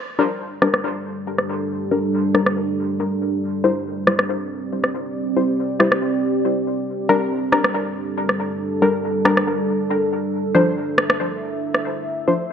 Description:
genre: deep dubstep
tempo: 139 BPM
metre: 4/4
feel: swing 55% on 16ths, half-time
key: unclear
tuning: A4 = 440 Hz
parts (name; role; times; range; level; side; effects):
- deep dark ambient pad; sustained chords; 0.7-12.5 s; G3 to E5; -22 LUFS; right 1 dB; chorus, built-in reverb
- filtered dub chord stab; stabs; 0.2-12.3 s; F3 to C5; -21 LUFS; left 3 dB; chorus, dub echo
- electronic rim click; drums; 0.6-11.8 s; none; -20 LUFS; equal; low-pass filter on snare, low-pass filter on hats
room: moderate plate reverb, RT60 1.7 s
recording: echo-heavy mix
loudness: -18 LUFS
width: side -8 dB against mid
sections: 0.0-12.5 A section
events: none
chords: 0.0 Gm; 3.4 C; 6.9 Gm; 10.3 D5

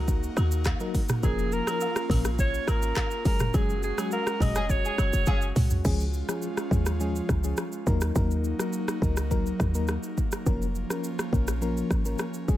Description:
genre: afrobeats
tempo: 104 BPM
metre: 4/4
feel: straight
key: unclear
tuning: A4 = 441 Hz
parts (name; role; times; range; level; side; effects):
- breathy alto saxophone; melody; 0.0-5.6 s; Ab4 to Eb5; -31 LUFS; right 2 dB; digital delay
- airy breathy pad; sustained chords; 0.0-12.6 s; F3 to Gb4; -35 LUFS; right 1 dB; chorus, sidechain pumping
- short 808-style bass; bass; 0.0-12.6 s; F1 to Eb2; -27 LUFS; equal; none
- afro-pop drum kit; drums; 0.1-12.6 s; crash cymbal, handclaps, hi-hat, kick drum, rim click, shaker, toms; -29 LUFS; equal; none
- agogo bells and woodblock; percussion; 0.4-5.4 s; none; -41 LUFS; equal; none
- FM electric piano with auto-pan; accompaniment; 0.8-12.6 s; F3 to Bb4; -33 LUFS; left 4 dB; none
- warm horn section; second line; 4.6-5.5 s; Db4 to Ab4; -34 LUFS; equal; none
room: little or no reverb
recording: none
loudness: -24 LUFS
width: side -14 dB against mid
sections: 0.0-5.8 A section; 5.8-12.6 B section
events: band accent 3.5-5.8; drum fill 5.3-5.8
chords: 0.0 Ebm; 1.2 Bbm/F; 3.3 Gbsus2; 5.8 Db; 7.9 Ebm; 10.5 Bbm/F

